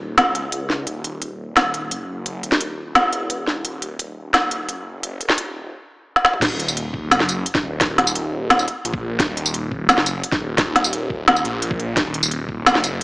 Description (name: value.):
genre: half-time drum and bass.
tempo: 173 BPM.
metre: 4/4.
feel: half-time.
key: Eb phrygian.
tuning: A4 = 437 Hz.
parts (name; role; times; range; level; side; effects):
phased detuned saw bass; bass; 0.0-13.0 s; Eb1 to Db2; -26 LUFS; equal; phaser.
organic electronic drum kit; drums; 0.2-13.0 s; crash cymbal, hi-hat, snare drum, tambourine, toms; -17 LUFS; equal; studio reverb.
electronic kick drum; drums; 6.4-12.6 s; none; -28 LUFS; equal; studio reverb.
room: moderate echo chamber reverb, RT60 2.2 s.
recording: high-pass filter, small speaker sound.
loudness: -18 LUFS.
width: side -22 dB against mid.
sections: 0.0-6.4 A section; 6.4-13.0 B section.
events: build-up 0.0-6.4; drum fill 6.2; drop 6.4-13.0.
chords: none.